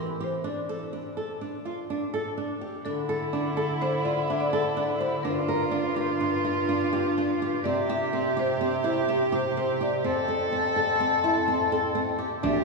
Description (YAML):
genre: contemporary instrumental, chamber music in an uneven meter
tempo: 125 BPM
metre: 5/4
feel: straight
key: D minor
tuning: A4 = 440 Hz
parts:
  - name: marimba with medium hard mallets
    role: melody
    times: 0.0-12.6 s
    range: A4 to E5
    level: -32 LUFS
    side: left 4 dB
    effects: none
  - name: flamenco guitar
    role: arpeggios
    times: 0.0-12.6 s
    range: C4 to Bb4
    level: -30 LUFS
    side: right 2 dB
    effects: none
  - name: clear bass clarinet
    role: bass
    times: 0.0-12.6 s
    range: D2 to E3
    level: -31 LUFS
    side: left 2 dB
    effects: none
  - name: warm cello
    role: second line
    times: 2.9-12.6 s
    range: E4 to A4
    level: -28 LUFS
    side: right 1 dB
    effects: none
  - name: frame drum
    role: percussion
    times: 12.4-12.6 s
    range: none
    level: -30 LUFS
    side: left 2 dB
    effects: none
room: wet cathedral reverb, RT60 5.6 s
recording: recorded in a church or concert hall, studio ambience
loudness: -24 LUFS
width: side -2 dB against mid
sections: 0.0-2.9 A section; 2.9-12.6 B section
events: break 0.4-2.9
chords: 0.4 D5; 5.2 Gm7; 7.6 C; 10.0 F